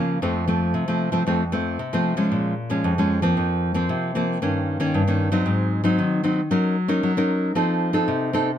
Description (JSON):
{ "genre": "samba", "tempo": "114 BPM", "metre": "4/4", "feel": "straight", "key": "unclear", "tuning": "A4 = 438 Hz", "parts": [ { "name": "nylon-string guitar", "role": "solo", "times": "0.0-8.6 s", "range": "F2 to Bb4", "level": "-20 LUFS", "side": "equal", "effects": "none" } ], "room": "light reverb", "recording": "close, detailed microphones", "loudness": "-20 LUFS", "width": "side -10 dB against mid", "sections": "0.0-8.6 A section", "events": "none", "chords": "0.2 F; 2.3 Bbm7; 3.4 Fsus4; 4.4 Eb7/G; 5.5 Ab7; 6.5 Ebm7/Gb; 7.6 F7", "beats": "| 0.22 0.75 1.27 1.79 | 2.32 2.84 3.37 3.89 | 4.42 4.94 5.46 5.99 | 6.51 7.04 7.56 8.08" }